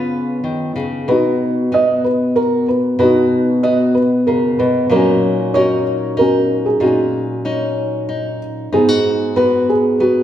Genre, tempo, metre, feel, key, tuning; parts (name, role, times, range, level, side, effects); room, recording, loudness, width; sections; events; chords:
acoustic folk-pop ballad; 94 BPM; 3/4; straight; G# dorian; A4 = 443 Hz
felt-muted upright piano; melody; 0.0-10.2 s; B3 to D#5; -15 LUFS; right 1 dB
nylon-string guitar; accompaniment; 0.0-10.2 s; G#2 to B4; -17 LUFS; left 1 dB
wet recital hall reverb, RT60 1.6 s; recorded in a church or concert hall; -13 LUFS; side -11 dB against mid
0.0-8.7 A section; 8.7-10.2 A section
0.0 C#7; 1.1 B; 4.9 D#m7/A#; 8.7 G#m7